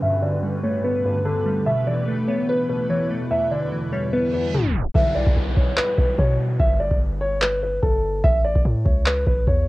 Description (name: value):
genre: hip hop, trap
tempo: 146 BPM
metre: 4/4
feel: half-time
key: unclear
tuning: A4 = 442 Hz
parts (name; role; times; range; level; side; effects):
- dark concert grand piano; melody; 0.0-9.6 s; A4 to E5; -24 LUFS; equal; low-pass filter
- glassy digital keys; accompaniment; 0.0-5.0 s; E2 to B4; -23 LUFS; equal; chorus, low-pass filter
- granular cloud pad; sustained chords; 0.0-4.9 s; D3 to B4; -30 LUFS; equal; built-in reverb, low-pass filter
- downlifter and reverse cymbal; sound effects; 0.0-8.2 s; none; -36 LUFS; equal; none
- long sustained 808-style bass; bass; 5.0-9.7 s; G1 to B2; -23 LUFS; equal; none
- booming analog drum machine; drums; 5.0-9.7 s; handclaps, kick drum; -20 LUFS; equal; cassette tape
room: light reverb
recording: home recording on cassette, tape stop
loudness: -19 LUFS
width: side -19 dB against mid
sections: 0.0-5.0 A section; 5.0-9.7 B section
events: filter sweep 0.0-5.0; reverse cymbal 4.3-5.0; tape stop 4.5-5.0; hi-hats muted 5.0-9.7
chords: 0.0 Gadd9; 1.7 Asus2; 3.3 Em7; 5.0 N.C.; 6.6 Gsus2; 8.2 A5